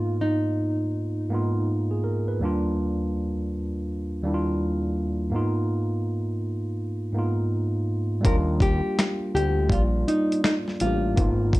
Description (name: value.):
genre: lo-fi hip hop.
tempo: 82 BPM.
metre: 4/4.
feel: swing 64% on 16ths.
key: Eb major.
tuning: A4 = 439 Hz.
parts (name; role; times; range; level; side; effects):
nylon-string guitar; melody; 0.0-2.0, 8.3-11.6 s; Eb4 to Bb4; -27 LUFS; equal; none.
tine electric piano; accompaniment; 0.0-11.6 s; Eb2 to D5; -25 LUFS; equal; cassette tape.
fat analog bass; bass; 8.2-11.6 s; Ab1 to Eb2; -24 LUFS; equal; none.
dusty soul sampler-style drum kit; drums; 8.2-11.6 s; finger snaps, hi-hat, kick drum, snare drum; -23 LUFS; equal; overdrive, vintage 12-bit sampler grit.
room: moderate studio reverb, RT60 0.6 s.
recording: dark, warm production.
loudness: -23 LUFS.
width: side -18 dB against mid.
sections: 0.0-8.2 A section; 8.2-11.6 B section.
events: none.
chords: 0.0 Abm6; 2.4 Ebmaj7; 5.3 Abm6; 8.2 Ebmaj7.